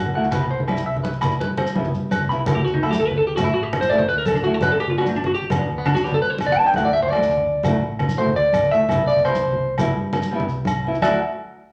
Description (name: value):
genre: highlife guitar band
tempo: 112 BPM (dotted quarters)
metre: 12/8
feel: straight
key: D mixolydian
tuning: A4 = 440 Hz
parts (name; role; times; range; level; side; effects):
- clean electric guitar; arpeggios; 0.0-11.2 s; A3 to B5; -22 LUFS; equal; none
- hollow-body short-scale fingered electric bass; bass; 0.0-11.2 s; G1 to G2; -32 LUFS; equal; none
- nylon-string guitar; accompaniment; 0.1-11.2 s; F#3 to E4; -29 LUFS; equal; none
- congas; percussion; 0.1-11.2 s; none; -27 LUFS; equal; none
- shekere; percussion; 0.2-11.2 s; none; -37 LUFS; equal; none
- agogo bells; percussion; 0.3-11.1 s; none; -31 LUFS; equal; none
room: wet large studio reverb, RT60 0.9 s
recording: none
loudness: -20 LUFS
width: mono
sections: 0.0-2.5 A section; 2.5-11.0 B section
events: clean electric guitar solo 2.5-11.0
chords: 0.3 Cmaj7; 2.5 Dadd9; 4.6 Gmaj7; 6.8 Dadd9; 8.9 Cmaj7; 11.0 Dadd9